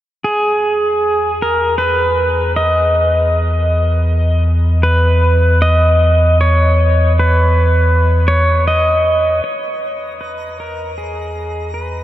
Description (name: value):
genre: ambient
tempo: 78 BPM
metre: 3/4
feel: straight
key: E lydian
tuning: A4 = 444 Hz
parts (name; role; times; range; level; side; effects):
- pedal steel guitar; melody; 0.2-12.0 s; G#4 to D#5; -15 LUFS; equal; diffuse ambient delay
- warm sub bass; bass; 0.2-12.0 s; E2; -14 LUFS; equal; none
- twinkling granular texture; texture; 9.8-12.0 s; A#5; -37 LUFS; right 1 dB; built-in reverb
room: moderate huge ambient reverb, RT60 7.4 s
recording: dark, warm production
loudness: -11 LUFS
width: side -13 dB against mid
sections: 0.2-9.5 A section; 9.5-12.0 B section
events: fade-in on sub bass 0.2-9.5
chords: 0.2 Emaj7(no3); 9.5 E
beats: | 0.23 0.99 1.76 | 2.53 3.30 4.07 | 4.84 5.61 6.38 | 7.15 7.92 8.69 | 9.46 10.22 10.99 | 11.76